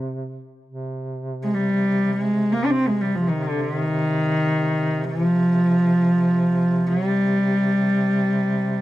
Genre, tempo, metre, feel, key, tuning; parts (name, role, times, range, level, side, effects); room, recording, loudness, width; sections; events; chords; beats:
caucasian folk, Caucasian lament; free time; C minor; A4 = 442 Hz
mellow duduk; drone; 0.0-8.8 s; C3; -29 LUFS; right 1 dB; stereo widening
warm cello; melody; 1.4-8.8 s; D3 to D4; -19 LUFS; equal
small room reverb; dry, close 1970s-style studio recording; -18 LUFS; side -15 dB against mid
0.6-8.8 A section
free time